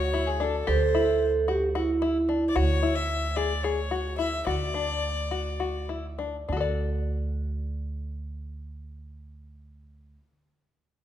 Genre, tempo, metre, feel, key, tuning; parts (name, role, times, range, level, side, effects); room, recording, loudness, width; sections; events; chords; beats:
contemporary instrumental, contemporary; 199-223 BPM (eighths); 7/8; straight; D major; A4 = 440 Hz
clear violin; melody; 0.0-5.9 s; G#4 to E5; -30 LUFS; left 4 dB
vibraphone with medium mallets; second line; 0.0-2.5 s; E4 to A4; -26 LUFS; right 4 dB
upright bass; bass; 0.0-10.2 s; D2; -30 LUFS; right 1 dB
open-back banjo; arpeggios; 0.1-10.3 s; D4 to D5; -30 LUFS; left 5 dB
wet recital hall reverb, RT60 1.7 s; dark, warm production; -25 LUFS; side -11 dB against mid
0.0-6.5 A section; 6.5-10.7 B section
slowing down 2.6-6.5
0.0 D; 0.7 C/D; 2.6 C#m/D; 4.5 D
0.14 0.41 | 0.67 0.94 1.21 1.48 1.75 2.02 2.29 | 2.56 2.82 3.09 3.36 3.64 3.91 4.19 | 4.46 4.74 5.03 5.31 5.60 5.89 6.19 | 6.49 6.79 7.09 7.39 7.70 8.00 8.30 | 8.60 8.90 9.21 9.51 9.81 10.11